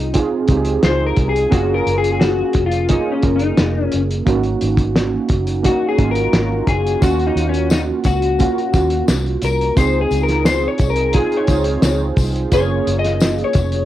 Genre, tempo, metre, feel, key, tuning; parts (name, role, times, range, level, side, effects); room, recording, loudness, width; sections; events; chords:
indie pop, bedroom pop; 87 BPM; 4/4; straight; A4 = 441 Hz
electric guitar through a small old amp; accompaniment; 0.0-13.8 s; Db4 to Eb5; -19 LUFS; left 6 dB; analog chorus, warbly pitch drift, cassette tape
warbly lo-fi synth keys; accompaniment; 0.0-13.8 s; Bb3 to C5; -20 LUFS; right 6 dB; chorus, cassette tape
vintage muted fingered electric bass; bass; 0.0-13.8 s; F1 to Eb2; -20 LUFS; equal
cloth-damped thuddy drum kit; drums; 0.1-13.8 s; hi-hat, kick drum, snare drum; -18 LUFS; equal; cassette tape
tambourine; percussion; 7.0-13.7 s; -35 LUFS; left 8 dB
moderate small room reverb, RT60 0.5 s; home recording on cassette; -14 LUFS; side -13 dB against mid
0.0-13.8 A section
clean electric guitar solo 0.0-13.8
0.0 Dbmaj7; 1.5 Gbmaj7; 4.3 Ab7sus4; 7.0 Ebm9; 9.8 Dbmaj7; 12.5 Gbmaj7